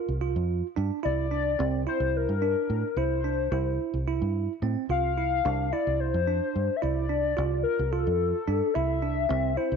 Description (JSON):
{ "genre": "progressive instrumental, band music in an uneven meter", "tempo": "218 BPM (eighths)", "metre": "7/8", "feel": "straight", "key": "C mixolydian", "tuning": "A4 = 442 Hz", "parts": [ { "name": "hollow square lead", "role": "melody", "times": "0.0-9.8 s", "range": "A4 to F5", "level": "-28 LUFS", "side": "left 10 dB", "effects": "chorus" }, { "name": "bell-like tine electric piano", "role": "arpeggios", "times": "0.0-9.8 s", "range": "C4 to F4", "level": "-31 LUFS", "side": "right 14 dB", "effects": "medium stereo tremolo" }, { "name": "fingered electric bass", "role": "bass", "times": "0.1-9.8 s", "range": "C2 to A2", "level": "-29 LUFS", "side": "right 1 dB", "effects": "none" } ], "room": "moderate echo chamber reverb, RT60 1.7 s", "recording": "1960s-style stereo with parts hard left and right", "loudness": "-25 LUFS", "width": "side -6 dB against mid", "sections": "0.0-9.8 A section", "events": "none", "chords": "0.0 Bb/C; 1.0 C7; 4.9 Bbmaj9#11/C (rootless); 8.8 C" }